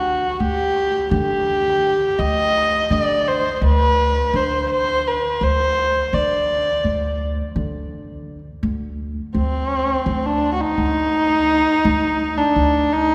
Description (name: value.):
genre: Turkish makam ensemble.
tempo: 168 BPM (eighths).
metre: 9/8.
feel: straight.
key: D makam hicaz.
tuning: A4 = 440 Hz.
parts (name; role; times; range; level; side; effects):
warm kamancheh; melody; 0.0-13.1 s; C4 to Eb5; -20 LUFS; equal; none.
upright bass; bass; 0.0-13.1 s; D2 to D3; -25 LUFS; equal; none.
room: wet church reverb, RT60 3.6 s.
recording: recorded in a church or concert hall.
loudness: -19 LUFS.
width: mono.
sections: 0.0-8.6 A section; 8.6-13.1 B section.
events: none.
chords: none.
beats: 0.04 0.40 0.76 1.12 1.48 1.84 | 2.19 2.55 2.91 3.27 3.63 3.98 4.34 4.70 5.06 | 5.42 5.78 6.13 6.49 6.85 7.21 7.56 7.92 8.28 | 8.64 8.99 9.35 9.71 10.06 10.42 10.78 11.14 11.49 | 11.85 12.21 12.57 12.92.